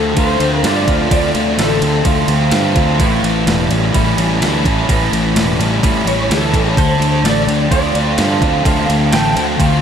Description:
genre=rock, shoegaze and dream pop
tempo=127 BPM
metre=4/4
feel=straight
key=D minor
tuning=A4 = 440 Hz
part: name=electric guitar at the edge of break-up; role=melody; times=0.0-2.3, 6.1-9.8 s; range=A4 to G5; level=-20 LUFS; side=equal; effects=ensemble chorus, diffuse ambient delay
part: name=fingerpicked twelve-string acoustic guitar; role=arpeggios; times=0.0-9.8 s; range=E3 to G4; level=-24 LUFS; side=right 2 dB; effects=lush chorus, diffuse ambient delay
part: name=biting overdriven guitar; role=riff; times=0.0-9.8 s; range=A2 to F4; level=-20 LUFS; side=right 11 dB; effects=reverse reverb
part: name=thick fuzz guitar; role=riff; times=0.0-9.8 s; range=A2 to F4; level=-18 LUFS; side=left 7 dB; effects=distortion, ensemble chorus
part: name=fingered electric bass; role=bass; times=0.0-9.8 s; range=E1 to G2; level=-18 LUFS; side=equal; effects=none
part: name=clean 12-bit digital drum machine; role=drums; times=0.2-9.7 s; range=kick drum, ride cymbal, snare drum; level=-19 LUFS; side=right 1 dB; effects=overdrive
room=moderate plate reverb, RT60 2.8 s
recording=dreamy mix soaked in reverb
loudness=-12 LUFS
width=side -8 dB against mid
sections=0.0-9.8 A section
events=none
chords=0.0 Dm7; 3.0 A7; 6.8 Dm7

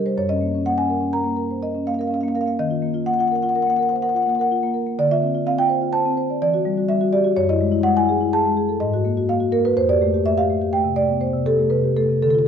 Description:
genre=classical, contemporary piece for solo marimba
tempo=125 BPM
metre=5/4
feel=rubato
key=unclear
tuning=A4 = 440 Hz
part: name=marimba with soft mallets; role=solo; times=0.0-12.5 s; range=F2 to Bb5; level=-18 LUFS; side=equal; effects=none
room=wet recital hall reverb, RT60 1.4 s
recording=dark, warm production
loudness=-18 LUFS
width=side -7 dB against mid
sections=0.0-12.5 A section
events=none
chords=0.2 Gb; 2.6 Ebmadd9; 5.0 Dm7; 6.4 Em9; 7.4 F#m9; 8.8 Absus2; 9.8 Fadd9

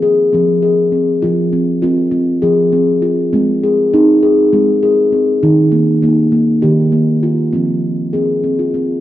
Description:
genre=world meditative, meditative tuned percussion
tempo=200 BPM (eighths)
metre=7/8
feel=straight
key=F minor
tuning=A4 = 440 Hz
part: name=steel tongue drum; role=solo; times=0.0-9.0 s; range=Eb3 to Ab4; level=-11 LUFS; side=equal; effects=none
room=wet concert hall reverb, RT60 2.0 s, small room ambience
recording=worn, warbling old tape, cassette tape, warbly pitch drift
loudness=-11 LUFS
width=side -13 dB against mid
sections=0.0-7.5 A section; 7.5-9.0 B section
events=none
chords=0.0 Fm; 3.3 Ab; 5.4 Eb; 7.5 Fm

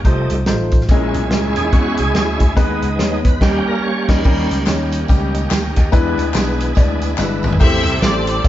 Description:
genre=uptempo gospel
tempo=143 BPM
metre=4/4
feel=swing 61% on 8ths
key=unclear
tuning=A4 = 440 Hz
part: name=warm concert grand piano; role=accompaniment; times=0.0-8.5 s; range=A2 to G#5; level=-21 LUFS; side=left 3 dB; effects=none
part: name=vintage slap bass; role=bass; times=0.0-8.5 s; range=F1 to E2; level=-21 LUFS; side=equal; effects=none
part: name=warm soul drum kit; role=drums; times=0.0-8.5 s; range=crash cymbal, hi-hat, kick drum, snare drum, toms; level=-16 LUFS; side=equal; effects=none
part: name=bright tonewheel organ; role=sustained chords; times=0.1-8.5 s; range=D#3 to C#5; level=-22 LUFS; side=right 2 dB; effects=slow rotary speaker, overdrive, chorus vibrato
part: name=tambourine and handclaps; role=percussion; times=4.2-7.5 s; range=none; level=-31 LUFS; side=left 2 dB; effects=none
part: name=rich symphonic string section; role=melody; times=7.6-8.5 s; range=E4 to E5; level=-19 LUFS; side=left 1 dB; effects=none
room=moderate large studio reverb, RT60 1.2 s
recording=band playing live in one room, nothing above 7.5 kHz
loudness=-14 LUFS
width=side -13 dB against mid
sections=0.0-4.3 A section; 4.3-7.6 B section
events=tonewheel organ solo 0.0-4.3; band accent 3.4-4.3; grand piano fill 6.8-7.6; drum fill 7.2-7.6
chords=0.0 F7; 0.9 A#m7b5; 2.6 G#m; 3.4 D#7; 5.9 E7; 7.6 Am7

